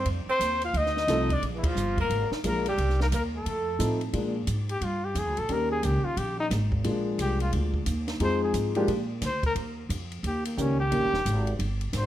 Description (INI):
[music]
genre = jazz, small-group swing and bop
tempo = 177 BPM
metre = 4/4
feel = swing 63% on 8ths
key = Bb mixolydian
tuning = A4 = 439 Hz
[part]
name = mellow trumpet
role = melody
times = 0.0-12.1 s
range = Bb3 to F5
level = -29 LUFS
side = left 2 dB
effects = none
[part]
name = growling tenor saxophone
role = second line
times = 0.0-4.0 s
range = E3 to F4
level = -34 LUFS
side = right 4 dB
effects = none
[part]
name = upright bass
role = bass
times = 0.0-12.1 s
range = Eb1 to Bb2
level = -29 LUFS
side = right 1 dB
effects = none
[part]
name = compact cocktail drum kit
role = drums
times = 0.1-12.0 s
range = hi-hat, kick drum, ride cymbal, snare drum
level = -35 LUFS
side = equal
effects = none
[part]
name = warm grand piano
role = accompaniment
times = 1.1-11.1 s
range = Eb3 to A4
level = -29 LUFS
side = left 1 dB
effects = none
[sound]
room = light reverb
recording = none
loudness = -25 LUFS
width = side -12 dB against mid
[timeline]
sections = 0.0-4.1 A section; 4.1-12.1 B section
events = band accent 1.6; trumpet solo 4.1-12.1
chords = 0.1 F7; 1.4 Bb7; 2.8 Cm; 3.5 F7; 4.1 Bb7; 5.5 Eb7; 6.8 Bb7; 8.2 Fm7; 8.9 Bb; 9.6 Eb7